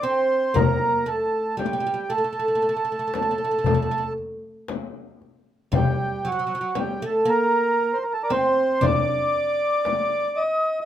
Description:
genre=Arabic maqam ensemble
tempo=116 BPM (eighths)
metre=10/8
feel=straight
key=D maqam hijaz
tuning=A4 = 441 Hz
part: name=mellow accordion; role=melody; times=0.0-10.9 s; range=F#4 to Eb5+25c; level=-23 LUFS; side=right 1 dB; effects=none
part: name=oud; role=second line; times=0.0-10.9 s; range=F#3 to D4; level=-25 LUFS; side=right 1 dB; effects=none
part: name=darbuka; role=percussion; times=0.1-10.5 s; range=none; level=-26 LUFS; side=left 2 dB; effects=none
part: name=frame drum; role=percussion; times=0.6-10.1 s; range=none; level=-28 LUFS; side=left 6 dB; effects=none
room=moderate studio ambience, RT60 0.5 s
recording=minimal, uncompressed stereo recording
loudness=-20 LUFS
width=side -11 dB against mid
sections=0.0-10.9 A section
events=none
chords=none

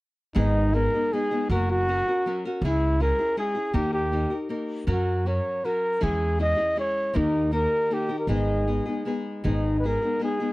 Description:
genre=mexican folk, mariachi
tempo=159 BPM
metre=3/4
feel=straight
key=G# minor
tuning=A4 = 435 Hz
part: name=nylon-string guitar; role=accompaniment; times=0.3-10.5 s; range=G#2 to A#4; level=-28 LUFS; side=left 2 dB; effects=none
part: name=dark trumpet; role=melody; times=0.4-10.5 s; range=D#4 to D#5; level=-25 LUFS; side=equal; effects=none
part: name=upright bass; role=bass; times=0.4-9.9 s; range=F#1 to F#2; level=-26 LUFS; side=equal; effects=none
room=light reverb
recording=dry, close 1970s-style studio recording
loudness=-22 LUFS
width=side -20 dB against mid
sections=0.4-9.4 A section; 9.4-10.5 A section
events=none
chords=0.4 G#m; 1.5 F#; 2.6 C#m; 3.7 D#; 4.9 F#; 6.0 C#m/E; 7.2 D#; 8.3 G#m

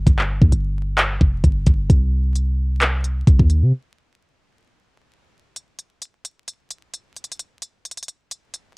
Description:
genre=hip hop, trap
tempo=131 BPM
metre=4/4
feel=half-time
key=unclear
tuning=A4 = 438 Hz
part: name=warm 808-style bass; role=bass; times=0.0-3.7 s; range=F1 to C3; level=-18 LUFS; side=equal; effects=none
part: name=trap drum kit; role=drums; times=0.1-8.7 s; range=handclaps, hi-hat, kick drum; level=-18 LUFS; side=equal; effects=cassette tape
room=little or no reverb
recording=home recording on cassette, vinyl crackle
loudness=-15 LUFS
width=side -37 dB against mid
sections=0.0-5.6 A section; 5.6-8.8 B section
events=break 3.7-5.6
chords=none

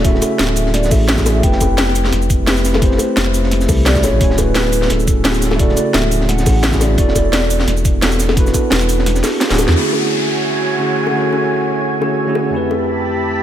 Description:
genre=liquid drum and bass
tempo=173 BPM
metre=4/4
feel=swing 54% on 16ths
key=D lydian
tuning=A4 = 440 Hz
part: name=hollow clarinet-like synth lead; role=melody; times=0.0-7.8 s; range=A4 to G5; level=-23 LUFS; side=right 1 dB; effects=chorus, diffuse ambient delay
part: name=bell-like tine electric piano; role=accompaniment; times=0.0-13.4 s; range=F2 to G#5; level=-18 LUFS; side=right 1 dB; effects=diffuse ambient delay
part: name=warm sub bass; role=bass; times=0.0-9.8 s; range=D1 to E2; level=-17 LUFS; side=equal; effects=tube saturation
part: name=crunchy breakbeat drum kit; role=drums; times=0.0-9.7 s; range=hi-hat, snare drum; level=-24 LUFS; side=equal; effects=high-pass filter on hats, high-pass filter on snare, high-pass filter on room
part: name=drum and bass drum kit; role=drums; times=0.0-9.7 s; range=hi-hat, shaker, snare drum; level=-20 LUFS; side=equal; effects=low-pass filter on hats, low-pass filter on perc, low-pass filter on snare, low-pass filter on room
part: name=electronic kick drum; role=drums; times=0.0-8.6 s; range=none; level=-16 LUFS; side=equal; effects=none
part: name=bongos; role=percussion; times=0.2-12.8 s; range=none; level=-26 LUFS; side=left 4 dB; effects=none
part: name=lush unison pad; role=sustained chords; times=9.8-13.4 s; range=F#4 to B5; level=-20 LUFS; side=right 1 dB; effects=chorus, vintage 12-bit sampler grit, sidechain pumping
part: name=downlifter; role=sound effects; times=9.8-12.5 s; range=none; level=-24 LUFS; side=left 1 dB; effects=none
room=moderate lush hall reverb, RT60 1.9 s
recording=dreamy mix soaked in reverb, faint mains hum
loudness=-12 LUFS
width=side -11 dB against mid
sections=0.0-9.8 A section; 9.8-13.4 B section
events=drop 0.0-9.8; kick drops out 9.1-9.8; drum fill 9.2-9.8; band accent 9.7; filter sweep on analog synth pad 9.8-13.4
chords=0.0 Dmaj9#11; 1.4 Fmaj9#11; 4.0 Dmaj9#11; 7.0 E7sus4; 9.8 Dmaj9#11; 12.5 Fmaj9#11

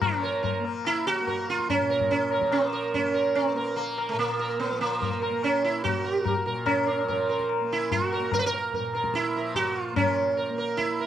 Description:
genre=indian classical, Hindustani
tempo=145 BPM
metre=4/4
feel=straight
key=Bb raga todi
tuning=A4 = 440 Hz
part: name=sitar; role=melody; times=0.0-11.1 s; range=A3 to Cb5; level=-25 LUFS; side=right 4 dB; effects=none
part: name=tanpura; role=drone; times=0.0-11.1 s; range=Bb2 to Bb3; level=-35 LUFS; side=left 2 dB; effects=cassette tape
part: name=tabla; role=percussion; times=0.0-10.9 s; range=none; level=-31 LUFS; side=left 8 dB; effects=none
room=moderate studio ambience, RT60 0.5 s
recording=home recording on cassette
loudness=-24 LUFS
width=side -10 dB against mid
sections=0.0-11.1 A section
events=none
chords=none

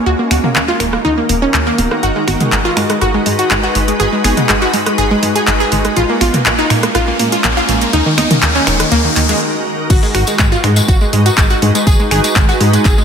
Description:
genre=progressive house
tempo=122 BPM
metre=4/4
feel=straight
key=G# minor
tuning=A4 = 440 Hz
part: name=shimmering ambient pad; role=sustained chords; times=0.0-13.0 s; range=D#3 to B4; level=-19 LUFS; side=equal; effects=chorus, built-in reverb, sidechain pumping
part: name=wide unison pluck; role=arpeggios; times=0.0-13.0 s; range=D#3 to G#4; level=-15 LUFS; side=equal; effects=sidechain pumping, dub echo
part: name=plucky analog bass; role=bass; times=0.1-13.0 s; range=D#1 to A#2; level=-17 LUFS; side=equal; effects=sidechain pumping
part: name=big-room dance drum kit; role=drums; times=0.3-13.0 s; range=crash cymbal, finger snaps, handclaps, hi-hat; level=-18 LUFS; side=equal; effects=overdrive, small room ambience
part: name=deep house drum kit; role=percussion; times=0.3-8.9 s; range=congas, rim click, toms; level=-20 LUFS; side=right 2 dB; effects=sidechain pumping on perc, small room ambience, sidechain pumping on toms, sidechain pumping on snare
part: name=riser and swell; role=sound effects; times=5.2-9.9 s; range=none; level=-22 LUFS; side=left 2 dB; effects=none
part: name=electronic kick drum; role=drums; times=9.9-13.0 s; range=none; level=-12 LUFS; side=equal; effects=small room ambience
part: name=tambourine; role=percussion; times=9.9-13.0 s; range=none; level=-23 LUFS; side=left 4 dB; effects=none
room=moderate lush hall reverb, RT60 1.9 s, digital ambience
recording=none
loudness=-10 LUFS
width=side -7 dB against mid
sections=0.0-9.9 A section; 9.9-13.0 B section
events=build-up 0.0-9.9; riser 5.2-9.4; swell 8.9-9.9; break 9.4-9.9; drop 9.9-13.0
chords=0.1 D#m; 2.0 G#m7; 6.0 A#m7; 7.9 D#m; 9.9 G#m7

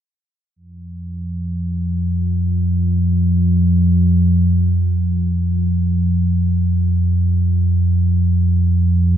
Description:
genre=ambient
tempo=free time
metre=none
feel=none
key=unclear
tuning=A4 = 440 Hz
part: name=deep rumbling drone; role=drone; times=0.9-9.2 s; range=F2 to F3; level=-14 LUFS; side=equal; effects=built-in reverb
room=light reverb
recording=none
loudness=-14 LUFS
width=side -10 dB against mid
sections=0.5-9.2 A section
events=none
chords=none

